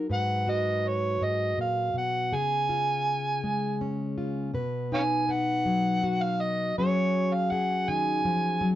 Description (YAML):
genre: acoustic folk-pop ballad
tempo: 54 BPM (dotted quarters)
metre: 6/8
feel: straight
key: unclear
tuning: A4 = 440 Hz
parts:
  - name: fingerpicked plugged-in steel-string acoustic guitar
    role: accompaniment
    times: 0.0-8.8 s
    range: G#2 to B4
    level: -28 LUFS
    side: left 2 dB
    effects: none
  - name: overdriven harmonica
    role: melody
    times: 0.1-8.7 s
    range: C#5 to G#5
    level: -27 LUFS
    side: right 2 dB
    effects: none
room: moderate studio reverb, RT60 0.5 s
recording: dark, warm production, nothing above 7.8 kHz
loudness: -25 LUFS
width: side -13 dB against mid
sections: 0.0-4.5 A section; 4.5-8.8 B section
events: none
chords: 0.1 G#m7; 2.3 C#; 4.5 B; 6.8 F#sus2